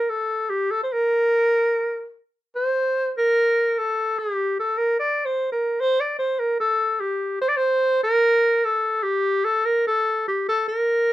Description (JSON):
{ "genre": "klezmer", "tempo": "74 BPM", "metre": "3/4", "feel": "straight", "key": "unclear", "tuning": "A4 = 440 Hz", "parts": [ { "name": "breathy clarinet", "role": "solo", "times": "0.0-11.1 s", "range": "G4 to D5", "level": "-19 LUFS", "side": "equal", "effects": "none" } ], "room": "moderate studio ambience, RT60 0.5 s", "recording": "none", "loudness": "-19 LUFS", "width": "side -14 dB against mid", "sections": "0.0-7.4 A section; 7.4-11.1 A section", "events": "none", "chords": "none" }